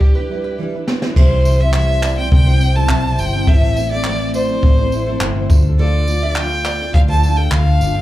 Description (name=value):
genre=acoustic pop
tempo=104 BPM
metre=4/4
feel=straight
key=unclear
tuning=A4 = 440 Hz
part: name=clear violin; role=melody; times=0.0-8.0 s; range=G4 to A5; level=-21 LUFS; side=equal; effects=slapback echo, digital delay
part: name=picked steel-string acoustic guitar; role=accompaniment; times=0.0-8.0 s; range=A2 to C5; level=-23 LUFS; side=left 1 dB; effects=double-tracked left and right, slapback echo
part: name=jazz brush drum kit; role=drums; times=0.0-7.9 s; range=crash cymbal, handclaps, kick drum, snare drum, tambourine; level=-16 LUFS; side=equal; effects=none
part: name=nylon-string guitar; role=arpeggios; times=0.1-7.7 s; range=A4 to E5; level=-30 LUFS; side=right 4 dB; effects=slapback echo, digital delay
part: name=vintage muted fingered electric bass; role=bass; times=1.2-8.0 s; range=G1 to D2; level=-16 LUFS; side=equal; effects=none
part: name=group handclap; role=percussion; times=1.7-7.7 s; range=none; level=barely audible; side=none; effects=none
room=little or no reverb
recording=live gig heard through the venue's PA, club reverb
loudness=-13 LUFS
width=side -15 dB against mid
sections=0.0-1.2 A section; 1.2-8.0 B section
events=drum fill 0.0-1.2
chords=0.0 Em7; 1.2 C; 3.5 Am; 5.5 Dm